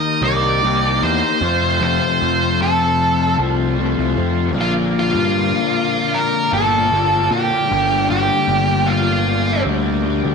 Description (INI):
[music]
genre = rock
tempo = 76 BPM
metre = 4/4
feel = straight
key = unclear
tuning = A4 = 437 Hz
[part]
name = octave-fuzz lead guitar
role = melody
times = 0.0-9.6 s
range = F4 to Eb5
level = -18 LUFS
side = right 2 dB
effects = distortion, slapback echo
[part]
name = combo organ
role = sustained chords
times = 0.0-10.3 s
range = Bb3 to D6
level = -28 LUFS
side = right 16 dB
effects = none
[part]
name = crunchy overdriven guitar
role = riff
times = 0.0-10.3 s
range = F2 to G4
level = -20 LUFS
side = left 12 dB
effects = rotary speaker
[part]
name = fuzz picked electric bass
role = bass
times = 0.2-10.3 s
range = G1 to Bb2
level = -21 LUFS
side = right 2 dB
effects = overdrive
[sound]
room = light reverb, studio reverb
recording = 1960s-style stereo with parts hard left and right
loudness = -15 LUFS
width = side -5 dB against mid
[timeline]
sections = 0.0-10.3 A section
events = none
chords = 0.0 Eb; 1.4 F; 4.6 Bb; 7.7 Gm